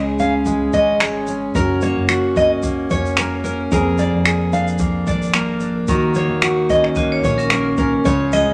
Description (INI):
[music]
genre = acoustic pop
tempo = 111 BPM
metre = 4/4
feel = swing 55% on 16ths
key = unclear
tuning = A4 = 440 Hz
[part]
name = picked steel-string acoustic guitar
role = accompaniment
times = 0.0-8.5 s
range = F2 to Ab4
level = -21 LUFS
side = equal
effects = none
[part]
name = nylon-string guitar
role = arpeggios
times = 0.0-8.5 s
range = Bb4 to F5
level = -23 LUFS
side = equal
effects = none
[part]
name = solid FM bass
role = bass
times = 0.0-8.5 s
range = F1 to Eb2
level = -29 LUFS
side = equal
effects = none
[part]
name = jazz brush drum kit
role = drums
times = 0.2-8.5 s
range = finger snaps, kick drum, shaker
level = -24 LUFS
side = equal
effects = none
[part]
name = vibraphone with hard mallets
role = second line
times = 7.0-8.0 s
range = Db4 to Eb5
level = -24 LUFS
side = equal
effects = none
[sound]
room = moderate large studio reverb, RT60 1.3 s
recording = none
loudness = -18 LUFS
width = mono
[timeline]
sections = 0.0-8.5 A section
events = none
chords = 0.0 Db5; 1.5 Gb; 3.7 Bb7/F; 5.9 Ebm7